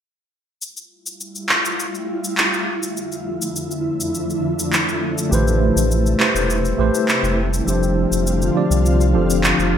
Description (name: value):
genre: sunset chillout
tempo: 102 BPM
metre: 4/4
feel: straight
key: D dorian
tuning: A4 = 441 Hz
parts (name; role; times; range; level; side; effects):
- shimmering ambient pad; sustained chords; 1.4-9.8 s; F2 to F4; -22 LUFS; left 1 dB; chorus, built-in reverb
- electronic shaker and handclaps; drums; 0.6-9.7 s; none; -21 LUFS; equal; gated reverb
- tine electric piano; accompaniment; 5.3-9.8 s; F3 to D5; -20 LUFS; equal; medium stereo tremolo, auto-pan, ping-pong delay
- warm sub bass; bass; 5.3-9.8 s; E1 to C2; -19 LUFS; equal; none
room: moderate plate reverb, RT60 2.1 s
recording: bright 1980s-style digital production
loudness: -16 LUFS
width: side -9 dB against mid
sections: 0.6-9.8 A section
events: filter sweep on ambient pad 0.6-9.8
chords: 0.6 Gsus2; 2.7 Dmadd9/F; 5.3 Am9; 7.4 F69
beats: | 0.61 1.20 1.79 2.38 | 2.96 3.55 4.14 4.73 | 5.32 5.91 6.49 7.08 | 7.67 8.26 8.85 9.44